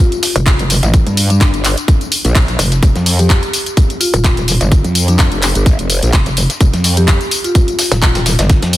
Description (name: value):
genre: bass house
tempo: 127 BPM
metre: 4/4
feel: swing 55% on 16ths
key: G minor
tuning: A4 = 444 Hz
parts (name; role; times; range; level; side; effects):
- marimba with medium mallets; melody; 0.0-7.6 s; D4 to G4; -22 LUFS; left 2 dB; dub echo
- garage drum kit; drums; 0.0-8.8 s; handclaps, hi-hat, tambourine; -17 LUFS; left 1 dB; none
- dusty soul sampler-style drum kit; drums; 0.2-8.8 s; hi-hat, snare drum, tambourine; -25 LUFS; equal; none
- metallic wobble bass; bass; 0.4-8.6 s; Eb1 to A1; -14 LUFS; equal; chorus, tube saturation, sidechain pumping
- electronic kick drum; drums; 0.5-8.6 s; none; -13 LUFS; equal; none
- growl bass; bass; 1.1-8.8 s; F1 to G2; -13 LUFS; equal; chorus, overdrive, sidechain pumping
room: digital ambience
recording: dense, heavily limited modern master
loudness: -10 LUFS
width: side -15 dB against mid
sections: 0.0-8.8 A section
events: none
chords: 0.0 Gm7; 2.8 N.C.